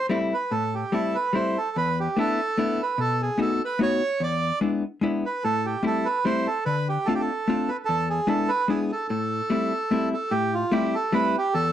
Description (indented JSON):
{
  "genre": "musette waltz",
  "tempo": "147 BPM",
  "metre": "3/4",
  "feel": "swing 55% on 8ths",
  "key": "A minor",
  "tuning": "A4 = 440 Hz",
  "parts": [
    { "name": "bandoneon", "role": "melody", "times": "0.0-11.7 s", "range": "F4 to D5", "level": "-25 LUFS", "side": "right 3 dB", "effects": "slapback echo" },
    { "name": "vintage hollow-body jazz guitar", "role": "accompaniment", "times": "0.1-11.7 s", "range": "E2 to F#4", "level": "-25 LUFS", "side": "left 3 dB", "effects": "none" }
  ],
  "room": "light reverb",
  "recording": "dry, close 1970s-style studio recording",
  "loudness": "-22 LUFS",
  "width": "side -10 dB against mid",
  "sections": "0.5-10.3 A section; 10.3-11.7 A section",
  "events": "none",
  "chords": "0.0 C6; 0.5 Am7; 1.8 E7sus4; 3.0 B7; 4.2 E7; 5.4 Am7; 6.6 Dm7; 7.9 E7; 9.1 Am7"
}